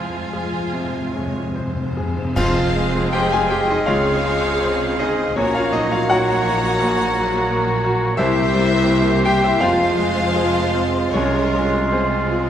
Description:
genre	classical, romantic movement for piano and orchestra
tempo	71-87 BPM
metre	4/4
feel	rubato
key	F minor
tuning	A4 = 440 Hz
part	bright concert grand piano	melody	0.0-12.5 s	Bb1 to Ab5	-21 LUFS	equal	none
part	warm symphonic violin section	melody	0.0-12.5 s	Ab4 to Ab5	-31 LUFS	left 3 dB	none
part	warm symphonic violin section	second line	0.0-12.5 s	C5 to Ab5	-28 LUFS	left 3 dB	none
part	clear symphonic viola section	accompaniment	0.0-12.5 s	Ab3 to Ab4	-27 LUFS	equal	none
part	rich studio cello section	bass	0.0-12.5 s	F2 to Ab3	-29 LUFS	right 2 dB	none
part	rich symphonic double bass section	bass	0.0-12.5 s	F1 to F2	-27 LUFS	right 2 dB	none
part	timpani	percussion	0.0-12.3 s	F2 to C3	-28 LUFS	left 2 dB	none
part	clear clarinet	second line	2.4-12.5 s	F4 to Ab4	-28 LUFS	left 1 dB	none
part	clear oboe	second line	2.4-12.5 s	C5 to F5	-27 LUFS	right 2 dB	none
part	mellow hollow silver concert flute	second line	2.4-12.5 s	Bb5 to C6	-28 LUFS	left 2 dB	none
part	mellow bassoon	accompaniment	2.4-12.5 s	Ab3 to Bb3	-27 LUFS	right 2 dB	none
part	dark French horn section	sustained chords	2.4-12.5 s	C4 to Ab4	-25 LUFS	left 1 dB	none
part	clash cymbals and concert bass drum	percussion	2.4-3.8 s	none	-30 LUFS	equal	none
room	wet scoring stage reverb, RT60 1.9 s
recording	none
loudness	-16 LUFS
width	side -10 dB against mid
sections	0.0-2.4 A section; 2.4-12.5 A section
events	timpani fill 0.0-2.4; band accent 2.4-3.1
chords	0.0 Fm; 3.9 Dbmaj7; 5.4 Gb/Bb; 8.2 C7; 9.6 Fm; 11.1 Fm/C

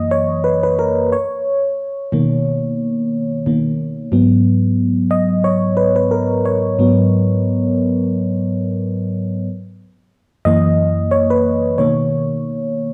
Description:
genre	R&B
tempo	90 BPM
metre	4/4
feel	swing 56% on 16ths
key	G# minor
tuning	A4 = 440 Hz
part	mellow FM electric piano	solo	0.0-12.9 s	F#2 to D#5	-17 LUFS	equal	chorus
room	wet large studio reverb, RT60 1.2 s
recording	band playing live in one room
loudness	-17 LUFS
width	mono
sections	0.0-12.9 A section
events	FM electric piano solo 0.0-12.9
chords	0.0 F#7; 1.1 Bmaj9; 4.1 G#m7; 9.4 F#6; 11.8 Bmaj9

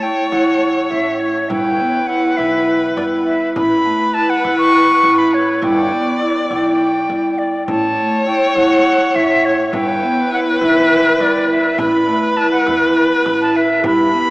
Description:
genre	contemporary instrumental, chamber music in an uneven meter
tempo	204 BPM (eighths)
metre	7/8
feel	straight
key	unclear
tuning	A4 = 440 Hz
part	bright concert flute	melody	0.0-14.3 s	C#5 to C#6	-17 LUFS	equal	none
part	warm viola	second line	0.0-14.3 s	G4 to D5	-19 LUFS	left 1 dB	none
part	vibraphone with medium mallets	arpeggios	0.0-14.3 s	A3 to E4	-16 LUFS	right 1 dB	none
part	upright bass	bass	0.3-14.1 s	G1 to E2	-30 LUFS	equal	none
part	frame drum	percussion	0.3-14.1 s	none	-34 LUFS	left 1 dB	none
room	wet cathedral reverb, RT60 6.0 s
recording	in a vast, echoing space, small speaker sound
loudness	-12 LUFS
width	side -20 dB against mid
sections	0.0-14.3 A section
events	none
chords	0.0 A; 1.5 Em/G; 3.6 Aadd9; 5.6 Em7/G; 7.7 A; 9.7 Em/G; 11.8 Asus2

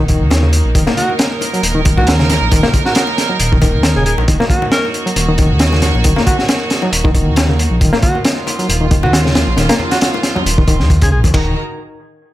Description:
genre	breakbeat, breaks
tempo	136 BPM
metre	4/4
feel	swing 55% on 16ths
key	Eb minor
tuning	A4 = 439 Hz
part	rich studio string section	sustained chords	0.0-11.5 s	Eb3 to Bb5	-21 LUFS	right 3 dB	sidechain pumping
part	barky reed electric piano	riff	0.0-11.5 s	Db3 to Bb3	-19 LUFS	left 1 dB	overdrive, fast tremolo, tape echo
part	dark detuned saw bass	bass	0.0-11.5 s	Eb1 to Eb2	-15 LUFS	equal	none
part	crunchy breakbeat drum kit	drums	0.1-11.5 s	hi-hat, kick drum, ride cymbal, snare drum	-14 LUFS	equal	none
part	bongos and congas	percussion	0.3-11.3 s	none	-25 LUFS	left 4 dB	none
part	clear alto saxophone	melody	1.0-11.2 s	Gb4 to Bb4	-20 LUFS	right 1 dB	old record sound, vintage 12-bit sampler grit, tape echo
room	small room ambience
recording	none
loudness	-11 LUFS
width	side -15 dB against mid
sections	0.0-11.3 A section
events	drop 0.0-11.3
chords	0.0 Ebm

